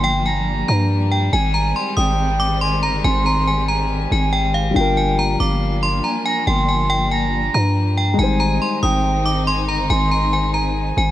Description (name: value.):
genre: hip hop.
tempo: 140 BPM.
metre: 4/4.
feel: half-time.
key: unclear.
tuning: A4 = 440 Hz.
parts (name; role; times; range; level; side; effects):
metallic FM bell; melody; 0.0-11.1 s; F5 to Eb6; -21 LUFS; equal; chorus, ping-pong delay.
silver concert flute; second line; 0.0-11.1 s; F5 to C6; -24 LUFS; right 3 dB; ping-pong delay.
warm studio string section; sustained chords; 0.0-11.1 s; Eb3 to Eb4; -26 LUFS; left 2 dB; none.
growling 808-style bass; bass; 0.0-11.1 s; G1 to G2; -19 LUFS; equal; none.
dark concert grand piano; accompaniment; 4.7-11.1 s; G3 to C5; -25 LUFS; left 5 dB; none.
room: light reverb.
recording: none.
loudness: -16 LUFS.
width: side -13 dB against mid.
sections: 0.0-11.1 A section.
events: none.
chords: 0.0 Gm7; 1.3 Abmaj7; 4.8 Gm7; 8.2 Abmaj7.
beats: 0.04 0.47 0.90 | 1.33 1.76 2.19 2.61 | 3.04 3.47 3.90 4.33 | 4.76 5.19 5.61 6.04 | 6.47 6.90 7.33 7.76 | 8.19 8.61 9.04 9.47 | 9.90 10.33 10.76.